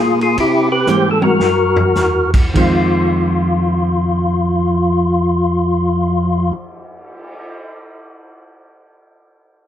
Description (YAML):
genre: soul jazz organ trio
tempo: 96-128 BPM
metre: 4/4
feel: swing 65% on 8ths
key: F minor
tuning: A4 = 440 Hz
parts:
  - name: percussive tonewheel organ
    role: melody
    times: 0.0-6.5 s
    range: E4 to C5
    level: -16 LUFS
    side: left 2 dB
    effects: slow rotary speaker, overdrive, chorus vibrato
  - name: tonewheel organ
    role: bass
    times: 0.0-6.5 s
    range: Fb2 to C3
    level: -17 LUFS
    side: equal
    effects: chorus vibrato, slow rotary speaker
  - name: vintage drum kit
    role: drums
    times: 0.2-7.4 s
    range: crash cymbal, cymbal swell, hi-hat, kick drum, ride cymbal, snare drum, toms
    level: -21 LUFS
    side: equal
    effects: none
  - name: hollow-body jazz guitar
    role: accompaniment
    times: 0.9-6.6 s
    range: Eb3 to Db4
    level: -21 LUFS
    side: right 2 dB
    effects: none
room: light reverb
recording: band playing live in one room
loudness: -13 LUFS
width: side -10 dB against mid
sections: 0.0-2.6 A section; 2.6-7.5 B section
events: slowing down 0.0-2.6; drum fill 0.9-2.0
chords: 0.4 C7b9; 1.4 Gb7; 2.6 Fm7